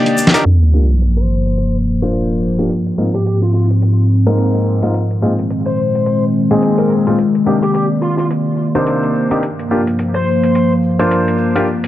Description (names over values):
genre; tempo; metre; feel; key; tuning
glitch hop; 107 BPM; 4/4; swing 58% on 16ths; G phrygian; A4 = 440 Hz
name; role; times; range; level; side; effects
warbly tape-like pad; sustained chords; 0.0-11.9 s; G2 to D5; -15 LUFS; equal; chorus, built-in reverb
bright grand piano; stabs; 0.0-11.6 s; Ab2 to D5; -17 LUFS; left 1 dB; low-pass filter, analog delay
boom bap sampler-style drum kit; drums; 0.1-11.9 s; hi-hat, snare drum; -19 LUFS; equal; low-pass filter on hats, small room ambience, low-pass filter on snare
egg shaker; percussion; 0.2-11.8 s; none; -24 LUFS; left 1 dB; none
sub drop; sound effects; 0.5-2.7 s; none; -14 LUFS; equal; none
bluesy overdriven lead guitar; melody; 1.2-10.7 s; F4 to C5; -22 LUFS; left 3 dB; distortion, analog delay
room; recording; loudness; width
moderate plate reverb, RT60 2.3 s; dry, gritty hardware recording, cassette tape, low-pass filter; -12 LUFS; side -13 dB against mid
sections
0.5-11.9 A section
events
drum fill 0.0-0.5; impact 0.5-2.7; filter sweep on grand piano 0.5-11.9; filter sweep on ambient pad 0.5-11.9; filter sweep 0.5-11.9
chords
0.5 Gm7; 2.7 Ab6; 4.9 Bb9sus4; 7.2 Cm9; 9.4 Gm7